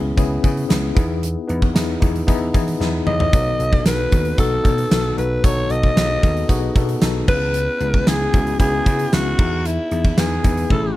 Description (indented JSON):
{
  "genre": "1980s-style pop",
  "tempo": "114 BPM",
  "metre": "4/4",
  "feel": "straight",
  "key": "unclear",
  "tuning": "A4 = 439 Hz",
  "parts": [
    { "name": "mellow tine electric piano", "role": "accompaniment", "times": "0.0-11.0 s", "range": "A3 to F#5", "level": "-24 LUFS", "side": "left 4 dB", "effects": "medium stereo tremolo" },
    { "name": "vintage slap bass", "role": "bass", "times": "0.0-10.9 s", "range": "A1 to E3", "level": "-23 LUFS", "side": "equal", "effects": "none" },
    { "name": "gated 80s drum kit", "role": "drums", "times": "0.2-10.8 s", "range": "crash cymbal, hi-hat, kick drum, snare drum, tambourine, toms", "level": "-19 LUFS", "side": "equal", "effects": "none" },
    { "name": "raspy alto saxophone", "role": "melody", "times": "3.1-11.0 s", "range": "E4 to D#5", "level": "-22 LUFS", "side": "equal", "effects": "none" }
  ],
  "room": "little or no reverb",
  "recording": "none",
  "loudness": "-16 LUFS",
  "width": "side -16 dB against mid",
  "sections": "0.0-11.0 A section",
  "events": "drum fill 2.8-3.3, 10.7",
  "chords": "0.0 C#m7; 1.0 Emaj7; 3.3 B7; 7.3 C#m7; 9.4 Emaj7"
}